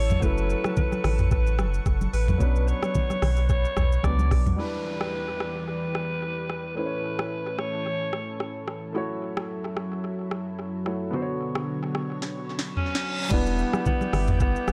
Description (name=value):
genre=afrobeats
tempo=110 BPM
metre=4/4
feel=swing 55% on 16ths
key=E dorian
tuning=A4 = 440 Hz
part: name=breathy alto saxophone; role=melody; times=0.0-8.7, 12.8-14.7 s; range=B3 to D5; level=-33 LUFS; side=equal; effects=tape echo
part: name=warm concert grand piano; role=accompaniment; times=0.0-14.7 s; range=D3 to C#5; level=-36 LUFS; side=equal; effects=none
part: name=lush unison pad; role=sustained chords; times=0.0-14.7 s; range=E2 to E6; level=-37 LUFS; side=equal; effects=chorus
part: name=sub bass with octave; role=bass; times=0.0-4.5, 13.3-14.7 s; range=E1 to C#2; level=-26 LUFS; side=equal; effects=none
part: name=afro-pop drum kit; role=drums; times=0.1-14.7 s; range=crash cymbal, hi-hat, kick drum, rim click, shaker, snare drum, toms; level=-30 LUFS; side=equal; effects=vintage 12-bit sampler grit, tape echo
part: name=congas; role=percussion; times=0.1-4.6, 13.7-14.7 s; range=none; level=-34 LUFS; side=equal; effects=none
part: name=downlifter and reverse cymbal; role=sound effects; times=4.6-13.3 s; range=none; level=-41 LUFS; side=equal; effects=none
room=little or no reverb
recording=echo-heavy mix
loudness=-26 LUFS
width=mono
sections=0.0-4.6 A section; 4.6-13.3 B section; 13.3-14.7 A section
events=drum fill 12.2-13.3; reverse cymbal 12.7-13.3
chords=0.2 F#m7; 2.4 Bmadd9; 4.6 Em7; 6.8 A; 8.9 F#m7; 11.1 Bmadd9; 13.3 Em7